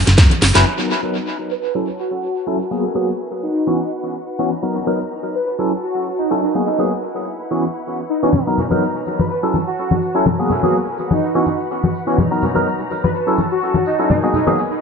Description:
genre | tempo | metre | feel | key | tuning
filtered disco house | 125 BPM | 4/4 | swing 55% on 16ths | B major | A4 = 440 Hz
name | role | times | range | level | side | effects
hollow-body short-scale fingered electric bass | bass | 0.0-0.6 s | F#1 to F#2 | -14 LUFS | equal | sidechain pumping, low-pass filter
house drum kit | drums | 0.1-0.6 s | hi-hat, snare drum | -18 LUFS | right 1 dB | sidechain pumping on hats, tape echo
tambourine and congas | percussion | 0.1-0.6, 8.3-14.8 s | none | -21 LUFS | left 2 dB | sidechain pumping on perc, low-pass filter on perc, tape echo
barky tine electric piano | accompaniment | 0.5-14.6 s | E3 to B4 | -19 LUFS | left 1 dB | overdrive, medium tremolo, phaser, sidechain pumping, low-pass filter, tape echo
clear symphonic string section | sustained chords | 0.7-14.8 s | D#4 to A#5 | -28 LUFS | equal | sidechain pumping, low-pass filter
analog synth brass | melody | 1.5-14.5 s | D#4 to B4 | -22 LUFS | right 1 dB | chorus, tremolo, phaser, sidechain pumping, low-pass filter, tape echo
room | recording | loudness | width
moderate spring reverb, RT60 1.7 s, digital ambience | echo-heavy mix, nothing above 10.6 kHz | -16 LUFS | side -5 dB against mid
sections
0.7-14.8 A section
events
drum fill 0.0-0.7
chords
0.0 F#7sus4; 0.7 Bmaj7; 1.6 A6; 2.6 G#m9; 3.3 F#7sus4; 4.5 Bmaj7; 5.5 A6; 6.4 G#m9; 7.1 F#7sus4; 8.3 Bmaj7; 9.3 A6; 10.3 G#m9; 11.0 F#7sus4; 12.2 Bmaj7; 13.1 A6; 14.1 G#m9

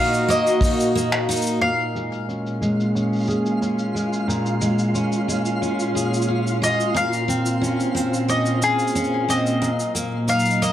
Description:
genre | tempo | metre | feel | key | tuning
folktronica | 90 BPM | 4/4 | straight | unclear | A4 = 440 Hz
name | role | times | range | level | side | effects
bowl-back mandolin | melody | 0.0-10.7 s | Ab4 to F5 | -23 LUFS | left 2 dB | ping-pong delay
warbly tape-like pad | sustained chords | 0.0-10.7 s | Bb2 to Eb5 | -25 LUFS | equal | chorus, built-in reverb
picked steel-string acoustic guitar | arpeggios | 0.0-10.7 s | Bb2 to Ab4 | -23 LUFS | equal | low-pass filter
vintage brush drum kit | drums | 0.0-10.7 s | cabasa, finger snaps, hi-hat | -29 LUFS | equal | low-pass filter on hats, low-pass filter on perc, low-pass filter on snare, low-pass filter on room
kick drum | drums | 0.6-0.7 s | none | -21 LUFS | equal | none
twinkling granular texture | texture | 2.7-10.7 s | F4 to F5 | -30 LUFS | equal | built-in reverb
room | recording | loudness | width
light reverb | vinyl crackle | -19 LUFS | side -11 dB against mid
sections
0.0-1.6 A section; 1.6-10.7 B section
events
filter sweep on steel-string acoustic guitar 1.6-10.7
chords
0.0 Ebm/Bb; 1.6 Db/Bb; 7.0 Bbmadd9; 9.6 Ebm/Bb

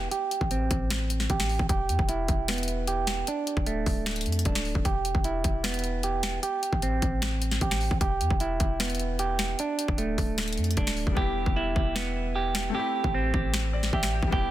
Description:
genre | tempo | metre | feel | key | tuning
hip hop, trap | 152 BPM | 4/4 | half-time | E minor | A4 = 439 Hz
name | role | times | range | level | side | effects
semi-hollow electric guitar | arpeggios | 0.0-14.5 s | A3 to G4 | -29 LUFS | right 4 dB | low-pass filter, digital delay
warm 808-style bass | bass | 0.0-14.5 s | D1 to F2 | -30 LUFS | equal | none
trap drum kit | drums | 0.1-14.4 s | finger snaps, hi-hat, kick drum, snare drum | -29 LUFS | left 1 dB | soft clipping on snare
felt-muted upright piano | accompaniment | 11.1-14.5 s | G3 to G5 | -34 LUFS | left 7 dB | low-pass filter
room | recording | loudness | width
little or no reverb | dense, heavily limited modern master | -25 LUFS | side -13 dB against mid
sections
0.0-14.5 A section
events
filter sweep 0.0-11.2; hi-hats muted 11.2-14.5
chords
0.1 Am7; 1.7 Em; 3.3 D5; 4.9 Em; 6.4 Am7; 8.0 Em; 9.6 D5; 11.2 Em; 12.7 Am7

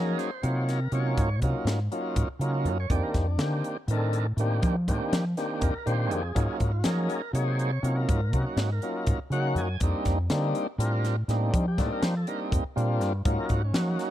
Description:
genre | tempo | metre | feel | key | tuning
electric jazz fusion | 243 BPM (eighths) | 7/8 | straight | unclear | A4 = 440 Hz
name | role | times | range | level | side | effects
tonewheel organ | accompaniment | 0.0-14.1 s | Eb3 to Ab5 | -30 LUFS | equal | slow rotary speaker, overdrive
deep dub fingered electric bass | bass | 0.0-14.0 s | F2 to F3 | -27 LUFS | equal | none
crisp fusion drum kit | drums | 0.2-14.1 s | hi-hat, kick drum, snare drum | -30 LUFS | equal | none
room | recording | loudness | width
little or no reverb | dry, close 1970s-style studio recording | -24 LUFS | side -12 dB against mid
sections
0.0-14.1 A section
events
tonewheel organ fill 9.1-9.8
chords
0.0 Ab13sus4; 2.9 F13sus4; 6.4 Ab13sus4; 9.8 F13sus4; 13.3 Ab13sus4

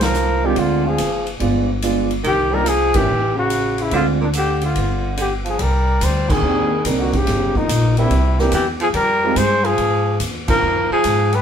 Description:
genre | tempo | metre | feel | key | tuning
jazz, small-group swing and bop | 143 BPM | 4/4 | swing 68% on 8ths | C minor | A4 = 439 Hz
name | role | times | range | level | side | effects
breathy trumpet | melody | 0.0-11.4 s | D4 to C5 | -19 LUFS | left 2 dB | none
warm baritone saxophone | second line | 0.0-11.4 s | Bb2 to Ab3 | -23 LUFS | right 2 dB | none
upright bass | bass | 0.0-11.4 s | F#1 to Ab2 | -21 LUFS | equal | none
swinging big-band drum kit | drums | 0.0-11.4 s | crash cymbal, hi-hat, kick drum, ride cymbal, snare drum | -25 LUFS | equal | none
warm baby grand piano | accompaniment | 0.4-9.4 s | F3 to Bb4 | -21 LUFS | right 4 dB | none
room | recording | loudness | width
moderate studio reverb, RT60 0.7 s | band playing live in one room | -15 LUFS | side -8 dB against mid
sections
0.0-5.6 A section; 5.6-11.4 B section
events
band accent 2.9, 6.2, 10.4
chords
0.0 Fm; 0.6 Dm7b5; 1.4 G7b9; 2.2 Cm11; 3.1 A; 3.9 Dm7b5; 4.8 G5; 5.6 Cm9; 7.3 Gm; 8.1 C7; 8.9 Fm9; 10.6 Fm

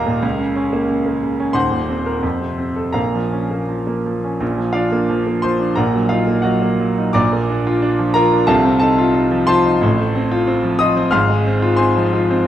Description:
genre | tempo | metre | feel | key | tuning
classical, virtuoso piano study | 81-92 BPM | 2/4 | rubato | Bb minor, Bb major from 4.4 s | A4 = 440 Hz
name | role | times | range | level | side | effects
clear baby grand piano | solo | 0.0-12.5 s | Eb1 to F6 | -15 LUFS | equal | none
room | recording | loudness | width
wet recital hall reverb, RT60 1.5 s | dark, warm production | -15 LUFS | side -11 dB against mid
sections
0.0-4.4 A section; 4.4-12.5 B section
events
none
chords
0.2 Bbm/Db; 1.6 Cm7b5/Eb; 2.2 F; 3.0 Bbm; 4.4 Bb; 5.8 Ebm/Bb; 7.2 Bb; 8.5 F7/C; 9.8 F/A; 11.1 Fm/Ab

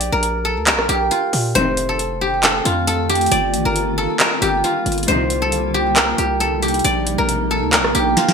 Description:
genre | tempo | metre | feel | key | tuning
hip hop, trap | 136 BPM | 4/4 | half-time | unclear | A4 = 440 Hz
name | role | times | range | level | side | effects
guzheng | melody | 0.0-8.3 s | F4 to D5 | -18 LUFS | equal | none
distorted 808-style bass | bass | 0.0-8.2 s | F1 to Bb2 | -24 LUFS | equal | distortion
booming analog drum machine | drums | 0.0-8.3 s | handclaps, hi-hat, rim click, snare drum | -19 LUFS | right 1 dB | gated reverb
granular cloud pad | sustained chords | 2.3-8.3 s | G3 to Bb3 | -24 LUFS | left 1 dB | built-in reverb, wide subtle chorus
clear symphonic string section | stabs | 1.6-1.9, 5.1-5.4 s | A2 to Eb3 | -24 LUFS | left 3 dB | none
room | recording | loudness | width
moderate plate reverb, RT60 1.1 s | bright 1980s-style digital production | -15 LUFS | side -6 dB against mid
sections
0.0-8.3 A section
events
drum fill 8.2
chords
0.0 Bb; 1.6 F7; 3.3 Gm7; 5.1 Cm7; 6.8 Bbmaj7

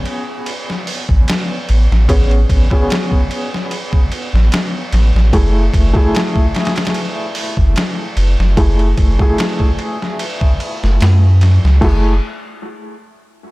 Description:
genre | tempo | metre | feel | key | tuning
trip hop | 74 BPM | 4/4 | swing 54% on 16ths | F# minor | A4 = 440 Hz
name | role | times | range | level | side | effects
felt-muted upright piano | accompaniment | 0.0-12.1 s | A3 to G#4 | -21 LUFS | equal | tremolo, tape echo
trip hop sampler-style drum kit | drums | 0.1-12.0 s | crash cymbal, hi-hat, kick drum, ride cymbal, snare drum | -16 LUFS | equal | overdrive
warm sub bass | bass | 1.1-12.2 s | F#1 to F#2 | -11 LUFS | equal | none
room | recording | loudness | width
digital ambience | none | -12 LUFS | side -20 dB against mid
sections
0.0-11.8 A section; 11.8-13.5 B section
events
none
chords
0.0 Amaj9; 5.3 F#m7

